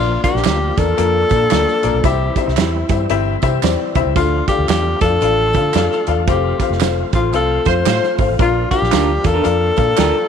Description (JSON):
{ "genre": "uptempo 1960s-style soul", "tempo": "113 BPM", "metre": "4/4", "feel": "swing 61% on 8ths", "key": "unclear", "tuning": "A4 = 440 Hz", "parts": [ { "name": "breathy tenor saxophone", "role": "melody", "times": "0.0-10.3 s", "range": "E4 to C5", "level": "-18 LUFS", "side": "left 2 dB", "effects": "none" }, { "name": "warm upright piano", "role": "accompaniment", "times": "0.0-10.2 s", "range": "Bb2 to G5", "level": "-20 LUFS", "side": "left 12 dB", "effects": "none" }, { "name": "overdriven tonewheel organ", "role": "sustained chords", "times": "0.0-10.3 s", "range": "E3 to F4", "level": "-28 LUFS", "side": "right 2 dB", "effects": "slow rotary speaker, chorus vibrato" }, { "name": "vintage muted fingered electric bass", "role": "bass", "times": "0.0-10.1 s", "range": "F1 to D3", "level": "-20 LUFS", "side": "right 1 dB", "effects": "none" }, { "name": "natural country drum kit", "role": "drums", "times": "0.2-10.1 s", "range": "hi-hat, kick drum, snare drum", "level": "-20 LUFS", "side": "right 5 dB", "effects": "none" }, { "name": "tambourine and handclaps", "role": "percussion", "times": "0.2-10.1 s", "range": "none", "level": "-30 LUFS", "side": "right 16 dB", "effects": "none" }, { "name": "warm horn section", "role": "second line", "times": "7.7-8.3 s", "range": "A3 to C5", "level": "-23 LUFS", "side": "right 12 dB", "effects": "none" }, { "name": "electric guitar through a small old amp", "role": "stabs", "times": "8.9-10.1 s", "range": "D4 to Bb4", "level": "-22 LUFS", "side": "right 14 dB", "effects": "lush chorus" } ], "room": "light reverb, small room ambience", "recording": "1960s-style stereo with parts hard left and right", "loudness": "-13 LUFS", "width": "side -7 dB against mid", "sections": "0.0-10.3 A section", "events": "band accent 6.3-8.4", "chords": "0.0 Bb; 2.0 C; 4.2 Dm; 6.3 F; 8.4 Bb" }